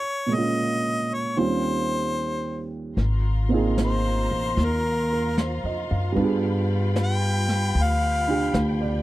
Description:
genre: jazz ballad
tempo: 75 BPM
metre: 4/4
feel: swing 67% on 8ths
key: Ab major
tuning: A4 = 444 Hz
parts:
  - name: bright harmonica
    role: melody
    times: 0.0-8.6 s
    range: Bb4 to G5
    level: -26 LUFS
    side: left 1 dB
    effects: none
  - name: dark grand piano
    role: accompaniment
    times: 0.3-9.0 s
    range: Eb2 to G5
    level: -26 LUFS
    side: right 3 dB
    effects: none
  - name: clear studio string section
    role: sustained chords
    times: 3.0-9.0 s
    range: F4 to C6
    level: -34 LUFS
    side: left 4 dB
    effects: none
  - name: upright bass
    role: bass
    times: 3.0-9.0 s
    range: Ab1 to G2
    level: -24 LUFS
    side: left 1 dB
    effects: none
  - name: vintage brush drum kit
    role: drums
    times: 3.0-9.0 s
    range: brushed snare drum, hi-hat, snare drum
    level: -26 LUFS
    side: equal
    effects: none
room: little or no reverb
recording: dry, close 1970s-style studio recording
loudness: -21 LUFS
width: side -16 dB against mid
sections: 0.0-3.0 A section; 3.0-9.0 B section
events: break 0.0-3.0; harmonica solo 3.0-9.0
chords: 0.0 Bbm7; 1.4 Eb13; 3.0 Ab69; 6.2 G7b9

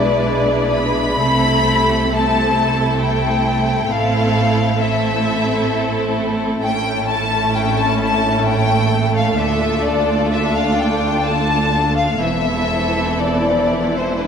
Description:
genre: classical, slow romantic movement for string orchestra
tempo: 66 BPM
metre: 3/4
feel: uneven beats, rubato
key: A minor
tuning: A4 = 439 Hz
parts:
  - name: clear studio violin section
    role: melody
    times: 0.0-14.3 s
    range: B4 to B5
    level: -19 LUFS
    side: left 3 dB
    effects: none
  - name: rich studio violin section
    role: second line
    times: 0.0-14.3 s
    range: E4 to B4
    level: -22 LUFS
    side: left 1 dB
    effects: none
  - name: rich studio viola section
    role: accompaniment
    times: 0.0-14.3 s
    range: E3 to D4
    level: -21 LUFS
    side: equal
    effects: none
  - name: rich studio cello section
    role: bass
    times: 0.0-14.3 s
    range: D2 to C3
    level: -22 LUFS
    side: right 3 dB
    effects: none
  - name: rich studio double bass section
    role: bass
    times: 0.0-14.3 s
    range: E1 to D2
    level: -25 LUFS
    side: right 4 dB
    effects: none
room: wet concert hall reverb, RT60 2.3 s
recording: minimal, uncompressed stereo recording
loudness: -15 LUFS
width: side -7 dB against mid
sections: 0.0-14.3 A section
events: none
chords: 0.0 E7/B; 1.2 Am/C; 3.9 Am; 6.6 A; 9.4 Dm; 12.2 Am/E

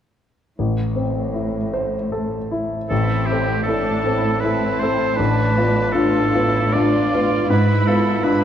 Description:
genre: classical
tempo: 79 BPM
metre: 3/4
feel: rubato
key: A minor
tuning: A4 = 441 Hz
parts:
  - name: clear grand piano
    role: melody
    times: 0.6-8.4 s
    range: A1 to C5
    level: -19 LUFS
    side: left 1 dB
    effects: none
  - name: muted studio cello section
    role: bass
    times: 0.6-8.4 s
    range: G#2 to A2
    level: -25 LUFS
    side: right 2 dB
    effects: none
  - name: muted studio violin section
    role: melody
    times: 2.9-8.4 s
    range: E5 to B5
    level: -32 LUFS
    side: right 1 dB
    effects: none
  - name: clear oboe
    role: second line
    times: 2.9-8.4 s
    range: G4 to D5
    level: -23 LUFS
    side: right 1 dB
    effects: none
  - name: muted studio violin section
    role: second line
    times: 2.9-8.4 s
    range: C4 to F4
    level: -29 LUFS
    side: left 2 dB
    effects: none
  - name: muted studio viola section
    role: accompaniment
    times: 2.9-8.4 s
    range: C4 to F4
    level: -28 LUFS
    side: right 1 dB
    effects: none
room: moderate recital hall reverb, RT60 1.6 s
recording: dark, warm production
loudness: -17 LUFS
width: side -9 dB against mid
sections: 0.6-2.9 A section; 2.9-8.4 B section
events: none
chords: 0.6 Am; 5.2 Bm7b5/A; 7.5 G#dim7

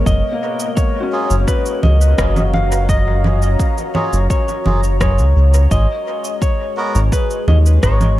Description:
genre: ambient dub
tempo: 85 BPM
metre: 4/4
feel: straight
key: unclear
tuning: A4 = 440 Hz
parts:
  - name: clean lap steel guitar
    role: melody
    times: 0.0-8.2 s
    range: B4 to E#5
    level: -22 LUFS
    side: left 2 dB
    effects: dub echo
  - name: deep dark ambient pad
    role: sustained chords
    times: 0.0-8.2 s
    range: G#3 to A#5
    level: -25 LUFS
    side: left 1 dB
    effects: chorus, built-in reverb
  - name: felt-muted upright piano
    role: arpeggios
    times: 0.0-5.7 s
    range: A#3 to A#4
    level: -28 LUFS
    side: left 3 dB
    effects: dub echo
  - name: round analog bass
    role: bass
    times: 0.0-8.2 s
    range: F#1 to D#2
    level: -13 LUFS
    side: equal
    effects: none
  - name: electronic cabasa, congas and rim click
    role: drums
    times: 0.1-8.1 s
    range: none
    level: -23 LUFS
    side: right 2 dB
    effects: overdrive, dub echo
  - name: electronic kick drum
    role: drums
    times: 0.1-8.0 s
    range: none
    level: -17 LUFS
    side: equal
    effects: overdrive
  - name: melodica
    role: stabs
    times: 1.1-7.0 s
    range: A#3 to A#4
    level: -27 LUFS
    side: right 2 dB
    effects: dub echo
room: digital ambience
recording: echo-heavy mix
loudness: -13 LUFS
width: side -15 dB against mid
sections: 0.0-8.2 A section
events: none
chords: 0.1 F#maj7; 5.7 G#7(no3)

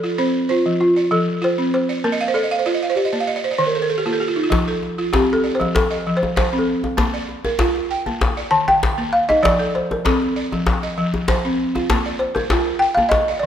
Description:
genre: west african traditional, West African string and xylophone music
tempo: 98 BPM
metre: 4/4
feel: straight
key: F mixolydian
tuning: A4 = 440 Hz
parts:
  - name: balafon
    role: melody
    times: 0.0-13.5 s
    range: F4 to A5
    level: -19 LUFS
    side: left 1 dB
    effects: tape echo
  - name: balafon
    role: arpeggios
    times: 0.0-13.5 s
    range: Eb3 to G5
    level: -20 LUFS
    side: right 2 dB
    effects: none
  - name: djembe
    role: percussion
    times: 4.5-13.3 s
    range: none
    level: -22 LUFS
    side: left 2 dB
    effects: none
room: moderate recital hall reverb, RT60 1.7 s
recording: none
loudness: -16 LUFS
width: side -9 dB against mid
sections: 0.0-4.5 A section; 4.5-13.5 B section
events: balafon fill 2.1-4.5; balafon solo 4.5-13.5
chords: 0.0 F; 2.0 Bb; 3.3 Eb; 4.5 F; 7.0 Bb; 8.2 Eb; 9.4 F; 11.9 Bb

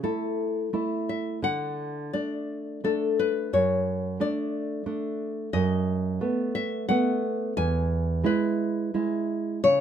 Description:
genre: romantic duo for nylon-string guitar and classical guitar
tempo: 87 BPM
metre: 3/4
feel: rubato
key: E major from 5.5 s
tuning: A4 = 442 Hz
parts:
  - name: nylon-string guitar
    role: melody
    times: 0.0-9.8 s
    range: A4 to G#5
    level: -27 LUFS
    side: left 4 dB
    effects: none
  - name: nylon-string guitar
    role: accompaniment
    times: 0.0-9.8 s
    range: E2 to E4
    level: -26 LUFS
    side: right 3 dB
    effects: none
room: moderate small room reverb, RT60 0.5 s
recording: minimal, uncompressed stereo recording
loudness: -25 LUFS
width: side -9 dB against mid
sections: 0.0-9.8 A section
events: none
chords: 0.0 A5; 1.4 D; 3.5 D/F#; 5.5 B7/F#; 7.6 E

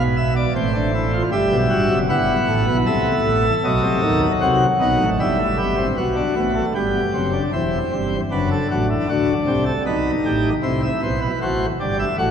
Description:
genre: classical, baroque-style 4-part fugue for pipe organ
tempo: 78 BPM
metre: 3/4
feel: straight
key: unclear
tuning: A4 = 441 Hz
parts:
  - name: pipe organ, plenum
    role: solo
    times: 0.0-12.3 s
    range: E1 to F#5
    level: -17 LUFS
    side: equal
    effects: none
room: wet cathedral reverb, RT60 4.1 s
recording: worn, warbling old tape, cassette tape, warbly pitch drift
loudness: -17 LUFS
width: side -8 dB against mid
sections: 0.0-6.0 A section; 6.0-12.3 B section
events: none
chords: 0.0 E7(no3); 0.6 Am; 1.3 Em; 2.9 Am/C; 3.6 B7; 5.2 Em/G; 6.0 Gmaj7; 7.5 C/E; 8.3 F#m7b5; 9.9 B7; 10.6 C

